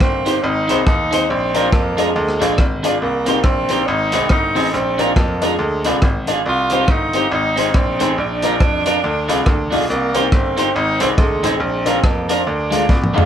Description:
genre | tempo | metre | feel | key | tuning
ska | 140 BPM | 4/4 | swing 59% on 8ths | unclear | A4 = 445 Hz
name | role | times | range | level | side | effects
warm tenor saxophone | melody | 0.0-13.2 s | Ab3 to F4 | -20 LUFS | right 1 dB | dub echo
bright grand piano | bass | 0.0-13.3 s | G1 to F2 | -21 LUFS | equal | none
crunchy breakbeat drum kit | drums | 0.0-13.3 s | hi-hat, kick drum, rim click, snare drum, toms | -18 LUFS | equal | none
electric guitar at the edge of break-up | accompaniment | 0.3-13.3 s | Ab3 to C5 | -22 LUFS | right 2 dB | dub echo
honky-tonk upright piano | stabs | 0.3-13.3 s | C4 to D5 | -23 LUFS | left 4 dB | none
room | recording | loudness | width
moderate studio reverb, RT60 0.6 s | none | -14 LUFS | side -9 dB against mid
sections
0.0-13.3 A section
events
drum fill 12.9-13.3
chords
0.4 Ab; 1.3 Bb; 2.2 Ddim; 3.0 Cm; 3.9 Ab; 4.7 Bb; 5.6 Ddim; 6.5 Cm; 7.3 Ab; 8.2 Bb; 9.0 Ddim; 9.9 Cm; 10.7 Ab; 11.6 Bb; 12.5 Ddim

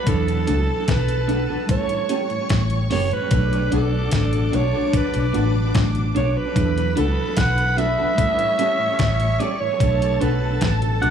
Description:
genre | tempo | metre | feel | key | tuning
lovers rock reggae | 74 BPM | 4/4 | straight | B minor | A4 = 440 Hz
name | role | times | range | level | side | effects
breathy alto saxophone | melody | 0.0-11.1 s | A4 to F#5 | -23 LUFS | right 3 dB | tape echo
string machine, violins | second line | 0.0-11.1 s | D4 to D6 | -28 LUFS | left 2 dB | ensemble chorus, tape echo
tine electric piano | accompaniment | 0.0-11.1 s | F#3 to A4 | -30 LUFS | equal | overdrive, fast stereo tremolo
vintage muted fingered electric bass | bass | 0.1-11.1 s | F#1 to E2 | -21 LUFS | equal | none
clean 12-bit digital drum machine | drums | 0.1-11.1 s | hi-hat, kick drum, snare drum | -22 LUFS | left 1 dB | none
mellow tonewheel organ | accompaniment | 0.3-11.1 s | E2 to D4 | -33 LUFS | left 3 dB | overdrive, chorus vibrato, slow rotary speaker, tape echo
electric guitar at the edge of break-up | stabs | 0.5-11.1 s | C#4 to A4 | -29 LUFS | right 1 dB | wide subtle chorus, tape echo
room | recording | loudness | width
light reverb, digital ambience | studio ambience | -18 LUFS | side -8 dB against mid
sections
0.0-11.1 A section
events
none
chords
0.1 E9sus4; 1.7 A7; 3.3 Bm7; 6.6 E9sus4; 8.2 A7; 9.8 Bm7

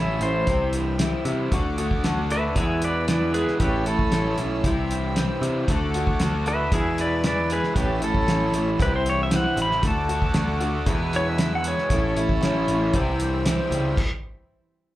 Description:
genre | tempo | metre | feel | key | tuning
folk rock and heartland rock | 116 BPM | 4/4 | straight | unclear | A4 = 440 Hz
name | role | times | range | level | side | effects
pedal steel guitar | melody | 0.0-12.9 s | G4 to B5 | -26 LUFS | equal | plate reverb, slapback echo
picked steel-string acoustic guitar | accompaniment | 0.0-14.0 s | E2 to F#4 | -28 LUFS | left 2 dB | plate reverb, slapback echo
accordion | sustained chords | 0.0-14.0 s | A4 to E6 | -35 LUFS | right 3 dB | light tremolo tuning, plate reverb
crunchy overdriven guitar | riff | 0.0-14.0 s | E2 to F#4 | -29 LUFS | right 1 dB | slapback echo
modern bright picked electric bass | bass | 0.0-13.9 s | A1 to C3 | -26 LUFS | equal | none
cloth-damped thuddy drum kit | drums | 0.2-14.1 s | crash cymbal, hi-hat, kick drum, snare drum | -25 LUFS | equal | none
room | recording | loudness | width
light reverb | live gig heard through the venue's PA, club reverb | -20 LUFS | side -15 dB against mid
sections
0.0-15.0 A section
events
pedal steel guitar solo 0.0-15.0; stop 14.0-15.0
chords
0.5 C; 1.5 D; 2.6 E; 3.6 A; 4.6 C; 5.7 D; 6.7 E; 7.8 A; 8.8 C; 9.8 D; 10.9 E; 11.9 A; 12.9 C; 14.0 N.C.

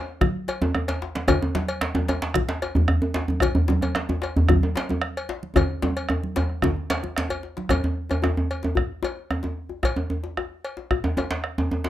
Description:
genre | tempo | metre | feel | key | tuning
west african traditional, West African drum ensemble | 112 BPM | 4/4 | straight | none | none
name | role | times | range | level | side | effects
bombo | percussion | 0.2-11.6 s | none | -26 LUFS | right 1 dB | none
congas | percussion | 0.2-7.7 s | none | -31 LUFS | right 4 dB | none
djembe | percussion | 0.2-11.9 s | none | -28 LUFS | left 5 dB | none
cowbell | percussion | 0.5-11.3 s | none | -29 LUFS | left 2 dB | none
djembe | percussion | 0.6-11.9 s | none | -23 LUFS | right 1 dB | none
room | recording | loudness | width
light reverb | rough home demo mix | -22 LUFS | side -13 dB against mid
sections
0.0-7.7 A section; 7.7-11.9 A section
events
drum fill 5.6-7.7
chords
none

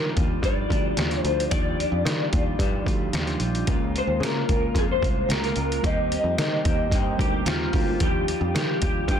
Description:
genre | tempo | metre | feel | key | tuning
indie pop, bedroom pop | 111 BPM | 4/4 | straight | Eb major | A4 = 440 Hz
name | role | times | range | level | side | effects
electric guitar through a small old amp | melody | 0.0-9.2 s | F4 to Eb5 | -27 LUFS | left 1 dB | ensemble chorus
electric guitar through a small old amp | accompaniment | 0.0-9.2 s | Db3 to G4 | -30 LUFS | left 2 dB | lush chorus, warbly pitch drift
soft electric-piano-like synth keys | accompaniment | 0.0-9.2 s | F3 to Bb4 | -33 LUFS | right 9 dB | chorus, cassette tape
picked electric bass | bass | 0.0-9.2 s | Bb1 to Eb3 | -28 LUFS | equal | none
trip hop sampler-style drum kit | drums | 0.2-9.2 s | hi-hat, kick drum, snare drum | -25 LUFS | equal | none
room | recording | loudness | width
light reverb | dense, heavily limited modern master | -21 LUFS | side -8 dB against mid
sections
0.0-8.0 A section; 8.0-9.2 B section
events
none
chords
0.0 Ebmaj9; 3.7 Db6; 5.8 Eb6; 8.0 Ebmaj9

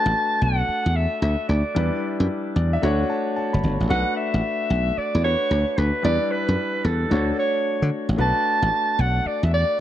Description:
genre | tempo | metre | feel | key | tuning
R&B, new jack swing | 112 BPM | 4/4 | swing 65% on 16ths | B minor | A4 = 440 Hz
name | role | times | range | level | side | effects
warm clarinet | melody | 0.0-9.8 s | A4 to A5 | -23 LUFS | right 1 dB | none
clear concert grand piano | accompaniment | 0.0-9.8 s | G3 to B5 | -27 LUFS | left 2 dB | none
dry thumbed slap bass | bass | 0.1-9.6 s | F#1 to D3 | -21 LUFS | equal | none
room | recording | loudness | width
light reverb, small room ambience | dark, warm production | -20 LUFS | side -12 dB against mid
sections
0.0-9.8 A section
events
grand piano fill 2.3-3.9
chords
0.0 Bm7; 1.8 Em7; 2.8 Dmaj7; 3.9 Bm7; 6.0 Em7; 7.1 Dmaj7; 8.2 Bm7

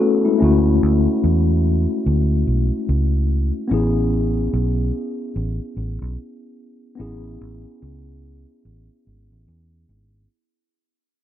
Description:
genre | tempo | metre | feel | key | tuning
lovers rock reggae | 73 BPM | 4/4 | swing 62% on 16ths | A major | A4 = 436 Hz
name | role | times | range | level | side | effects
mellow tine electric piano | accompaniment | 0.0-10.3 s | G#3 to C#5 | -20 LUFS | left 2 dB | medium stereo tremolo
vintage muted fingered electric bass | bass | 0.4-10.3 s | G#1 to E2 | -19 LUFS | equal | none
room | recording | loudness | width
moderate plate reverb, RT60 3.4 s | dark, warm production | -17 LUFS | side -11 dB against mid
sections
0.0-10.3 A section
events
fade-out 0.0-10.3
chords
0.4 Dmaj7; 3.7 Amaj7

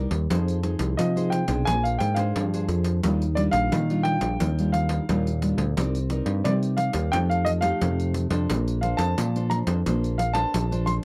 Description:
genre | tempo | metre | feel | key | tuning
samba and choro | 88 BPM | 4/4 | straight | Bb major | A4 = 441 Hz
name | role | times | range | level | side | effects
nylon-string guitar | accompaniment | 0.0-11.0 s | Bb2 to D5 | -30 LUFS | equal | none
picked electric bass | bass | 0.0-11.0 s | Bb1 to F3 | -28 LUFS | equal | none
pandeiro | percussion | 0.1-11.0 s | none | -33 LUFS | equal | none
warm grand piano | melody | 1.0-10.9 s | D5 to C6 | -29 LUFS | equal | none
room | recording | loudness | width
little or no reverb | dry, close 1970s-style studio recording | -24 LUFS | mono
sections
0.0-11.0 A section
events
none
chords
0.3 Fm7; 1.7 Bb9; 3.0 Ebmaj9; 5.8 Cm9; 7.1 F9; 8.5 Bbmaj9

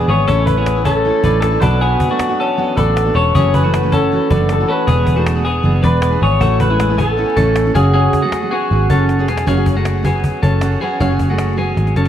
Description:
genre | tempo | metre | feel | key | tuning
jangly indie pop | 157 BPM | 4/4 | straight | F# minor | A4 = 441 Hz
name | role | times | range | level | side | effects
electric guitar through a small old amp | melody | 0.0-9.2 s | F#4 to C#5 | -18 LUFS | left 1 dB | slapback echo
picked steel-string acoustic guitar | accompaniment | 0.0-12.1 s | F#2 to A4 | -20 LUFS | right 4 dB | none
twelve-string electric guitar | arpeggios | 0.0-12.1 s | G#3 to G#5 | -19 LUFS | left 2 dB | slapback echo
picked electric bass | bass | 0.0-12.1 s | E1 to B1 | -16 LUFS | equal | none
cajon | drums | 0.3-12.1 s | none | -22 LUFS | equal | none
room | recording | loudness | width
moderate lush hall reverb, RT60 1.8 s | big arena sound, vinyl crackle | -12 LUFS | side -10 dB against mid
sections
0.0-9.5 A section; 9.5-12.1 B section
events
drum fill 9.1-9.5, 11.8-12.1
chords
0.3 A; 1.6 Bm; 3.3 F#m7; 4.9 E7; 6.4 A; 7.7 F#sus2

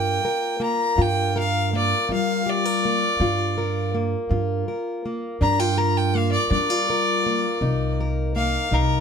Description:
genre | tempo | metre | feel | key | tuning
acoustic country blues, solo or duo | 54 BPM (dotted quarters) | 12/8 | straight | G minor | A4 = 440 Hz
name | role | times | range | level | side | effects
clear fiddle | melody | 0.0-9.0 s | Bb4 to Bb5 | -23 LUFS | left 1 dB | none
fingerpicked plugged-in steel-string acoustic guitar | accompaniment | 0.0-9.0 s | G2 to Bb4 | -25 LUFS | left 1 dB | none
upright bass | bass | 0.0-9.0 s | C2 to G3 | -24 LUFS | right 1 dB | none
room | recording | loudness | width
light reverb | none | -20 LUFS | side -6 dB against mid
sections
0.0-9.0 A section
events
fiddle solo 0.0-9.0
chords
0.0 Gm7; 7.6 Cm7

